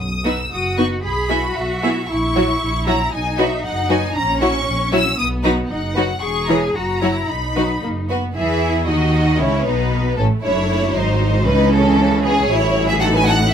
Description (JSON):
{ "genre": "quick classical-period movement for string orchestra", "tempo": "116 BPM", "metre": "2/4", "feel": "straight", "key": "B major, C# minor from 8.4 s", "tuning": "A4 = 440 Hz", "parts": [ { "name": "rich studio violin section", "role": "melody", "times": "0.0-13.5 s", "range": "G#4 to E6", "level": "-21 LUFS", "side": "left 1 dB", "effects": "none" }, { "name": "rich studio double bass section", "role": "bass", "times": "0.0-13.5 s", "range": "E1 to E2", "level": "-22 LUFS", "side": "right 1 dB", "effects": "none" }, { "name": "clear studio violin section", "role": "second line", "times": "0.2-13.4 s", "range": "B3 to E5", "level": "-23 LUFS", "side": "left 1 dB", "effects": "none" }, { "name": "rich studio viola section", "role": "accompaniment", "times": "0.2-13.5 s", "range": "E3 to E4", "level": "-22 LUFS", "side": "left 1 dB", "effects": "none" }, { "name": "rich studio cello section", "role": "bass", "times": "0.5-13.5 s", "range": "F#2 to G#4", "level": "-22 LUFS", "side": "right 1 dB", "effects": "none" } ], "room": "light reverb", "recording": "close, detailed microphones", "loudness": "-15 LUFS", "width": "side -8 dB against mid", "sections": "0.0-8.4 A section; 8.4-13.5 B section", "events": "none", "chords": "0.0 B; 1.0 E/B; 2.1 F#7/A#; 3.1 B; 4.2 F#7/A#; 5.2 B; 6.2 C#m/E; 6.8 F#7; 7.3 B; 8.4 E; 8.9 D#m; 9.4 A; 10.4 D/F#; 11.0 G#7; 11.5 C#m; 12.5 F#m7/A; 13.0 B7/A" }